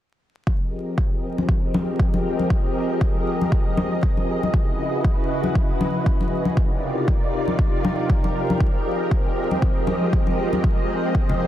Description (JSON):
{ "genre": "deep house", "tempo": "118 BPM", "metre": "4/4", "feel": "swing 57% on 16ths", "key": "F dorian", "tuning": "A4 = 440 Hz", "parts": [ { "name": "soft string machine", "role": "sustained chords", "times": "0.7-11.5 s", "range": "C3 to Eb5", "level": "-24 LUFS", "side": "equal", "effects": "ensemble chorus, sidechain pumping" }, { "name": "electronic kick drum", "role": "drums", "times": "0.5-11.3 s", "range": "none", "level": "-20 LUFS", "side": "equal", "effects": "overdrive" }, { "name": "ethereal airy pad", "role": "texture", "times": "1.7-11.5 s", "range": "Ab3 to G5", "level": "-32 LUFS", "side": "equal", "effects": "ensemble chorus, built-in reverb, tremolo, sidechain pumping" }, { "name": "congas", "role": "percussion", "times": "1.4-11.4 s", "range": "none", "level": "-26 LUFS", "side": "left 2 dB", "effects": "none" } ], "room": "light reverb", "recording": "dense, heavily limited modern master, vinyl crackle", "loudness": "-19 LUFS", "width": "side -12 dB against mid", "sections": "0.5-11.5 A section", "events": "fade-in on ambient pad 0.5-11.5; filter sweep on string machine 0.5-11.5", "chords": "0.5 Fm11; 4.5 Dbm11; 6.6 Cm11; 8.6 Fm11" }